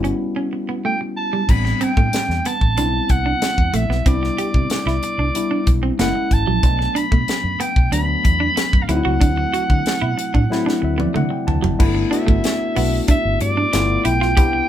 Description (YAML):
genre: polished 1980s jazz-funk pop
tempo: 93 BPM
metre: 4/4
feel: straight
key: G major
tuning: A4 = 440 Hz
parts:
  - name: tine electric piano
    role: accompaniment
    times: 0.0-14.7 s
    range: F#3 to A5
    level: -23 LUFS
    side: left 3 dB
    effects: none
  - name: clean electric guitar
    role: riff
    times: 0.0-14.6 s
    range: F#3 to G4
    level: -25 LUFS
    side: right 4 dB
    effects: none
  - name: vintage muted fingered electric bass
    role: bass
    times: 0.0-14.6 s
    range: F#1 to D3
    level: -22 LUFS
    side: equal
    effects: none
  - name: tight funk drum kit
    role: drums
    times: 0.0-14.5 s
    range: crash cymbal, hi-hat, kick drum, snare drum, toms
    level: -19 LUFS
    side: equal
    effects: none
  - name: breathy soprano saxophone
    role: melody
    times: 0.9-14.7 s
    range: D5 to B5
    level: -22 LUFS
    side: right 1 dB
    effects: none
room: moderate small room reverb, RT60 0.5 s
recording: band playing live in one room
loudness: -16 LUFS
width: side -11 dB against mid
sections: 0.0-1.5 A section; 1.5-11.8 B section; 11.8-14.7 C section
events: break 0.2-1.5; drum fill 10.5-11.8; tine electric piano fill 10.5-11.8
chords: 0.0 A9; 1.5 Am11; 4.1 Cmaj7; 6.0 F#7; 6.6 Bm7; 8.9 D7; 11.8 G69; 13.7 G13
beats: 0.20 0.84 | 1.49 2.13 2.77 3.42 | 4.06 4.70 5.35 5.99 | 6.63 7.28 7.92 8.57 | 9.21 9.86 10.50 11.15 | 11.79 12.44 13.08 13.73 | 14.37